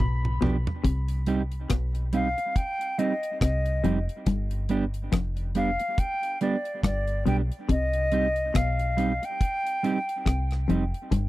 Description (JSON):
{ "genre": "roots reggae", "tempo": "70 BPM", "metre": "4/4", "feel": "swing 58% on 16ths", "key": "C harmonic minor", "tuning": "A4 = 440 Hz", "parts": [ { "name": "concert flute", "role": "melody", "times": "0.0-10.5 s", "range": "D5 to B5", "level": "-30 LUFS", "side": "left 1 dB", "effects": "dub echo" }, { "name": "semi-hollow electric guitar", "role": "riff", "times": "0.0-11.3 s", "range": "F2 to C3", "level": "-30 LUFS", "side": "left 6 dB", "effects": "none" }, { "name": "deep dub fingered electric bass", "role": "bass", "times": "0.0-11.3 s", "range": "F1 to C2", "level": "-27 LUFS", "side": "equal", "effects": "none" }, { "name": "deep reggae drum kit", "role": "drums", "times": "0.0-11.3 s", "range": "hi-hat, kick drum, rim click, toms", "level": "-28 LUFS", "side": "equal", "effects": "none" }, { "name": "mellow electric guitar", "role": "accompaniment", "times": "0.4-10.8 s", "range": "F3 to G4", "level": "-29 LUFS", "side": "right 4 dB", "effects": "dub echo" } ], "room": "little or no reverb", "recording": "dry, close 1970s-style studio recording", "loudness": "-24 LUFS", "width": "side -16 dB against mid", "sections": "0.8-11.3 A section", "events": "drum fill 0.0-0.8", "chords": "0.0 G7; 0.8 Cm; 4.3 G; 7.7 Cm", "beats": "| 0.84 1.70 2.55 3.41 | 4.26 5.12 5.98 6.83 | 7.69 8.55 9.40 10.26 | 11.12" }